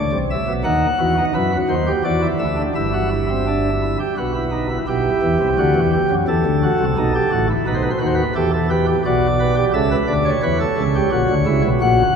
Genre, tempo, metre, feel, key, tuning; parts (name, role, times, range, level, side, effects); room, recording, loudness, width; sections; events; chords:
classical, baroque-style 3-part fugue for pipe organ; 86 BPM; 3/4; straight; E minor; A4 = 440 Hz
pipe organ, sparkling flutes; solo; 0.0-12.2 s; G1 to F#5; -16 LUFS; equal
wet cathedral reverb, RT60 6.0 s; minimal, uncompressed stereo recording; -16 LUFS; side -6 dB against mid
0.0-4.9 A section; 4.9-12.2 B section
0.0 Bm; 0.7 B/D#; 2.1 Dadd9; 2.8 Em/G; 4.2 B; 4.9 Em/B; 6.3 F#m7b5; 7.0 B7; 8.4 Em; 9.0 Bm; 10.4 C#m7b5/E; 11.1 F#7/A#